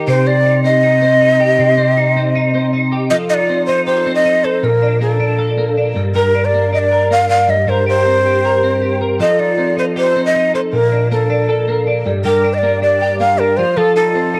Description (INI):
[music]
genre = indie pop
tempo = 158 BPM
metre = 4/4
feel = straight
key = unclear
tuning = A4 = 440 Hz
[part]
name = twelve-string electric guitar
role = arpeggios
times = 0.0-14.4 s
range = G2 to Bb4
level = -18 LUFS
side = equal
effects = ensemble chorus
[part]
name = breathy hollow shakuhachi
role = melody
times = 0.1-14.4 s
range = A4 to F5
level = -16 LUFS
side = equal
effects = none
[sound]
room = moderate echo chamber reverb, RT60 1.8 s, small room ambience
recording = cassette tape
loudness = -14 LUFS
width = mono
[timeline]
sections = 0.0-3.1 A section; 3.1-14.4 B section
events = none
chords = 0.1 Cm; 3.1 F7; 4.6 Bbmaj7; 6.0 Gm; 7.5 C5/G; 9.2 F7; 10.7 Bbmaj7; 12.1 Gm; 13.6 F7